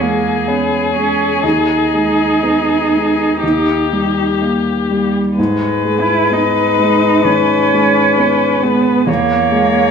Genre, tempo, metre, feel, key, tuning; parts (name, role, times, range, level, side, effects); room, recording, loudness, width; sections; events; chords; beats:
classical, slow romantic movement for piano trio; 59-67 BPM; 4/4; rubato; G# minor; A4 = 445 Hz
muted violin; melody; 0.0-9.9 s; G4 to C#5; -17 LUFS; left 11 dB
muted cello; second line; 0.0-9.9 s; G3 to E4; -15 LUFS; right 4 dB
dark baby grand piano; accompaniment; 0.0-9.9 s; D#2 to C#4; -17 LUFS; right 1 dB
moderate recital hall reverb, RT60 1.3 s; minimal, uncompressed stereo recording; -12 LUFS; side -6 dB against mid
0.0-9.9 A section
0.0 C#m/E; 1.4 G#m/D#; 3.4 D#; 5.4 G#m; 9.1 C#m/E
0.48 | 1.44 2.42 3.42 4.41 | 5.38 6.31 7.25 8.18 | 9.08